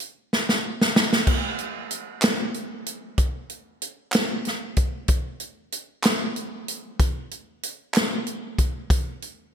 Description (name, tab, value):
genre	gospel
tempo	63 BPM (dotted quarters)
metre	6/8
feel	straight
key	none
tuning	none
part	natural country drum kit	drums	0.0-9.4 s	crash cymbal, hi-hat, kick drum, snare drum	-22 LUFS	equal	gated reverb
part	group handclap	percussion	2.2-8.2 s	none	-31 LUFS	right 2 dB	none
room	moderate plate reverb, RT60 2.3 s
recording	bright 1980s-style digital production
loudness	-22 LUFS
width	side -8 dB against mid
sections	0.0-1.3 A section; 1.3-9.5 B section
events	drum fill 0.3-1.3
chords	none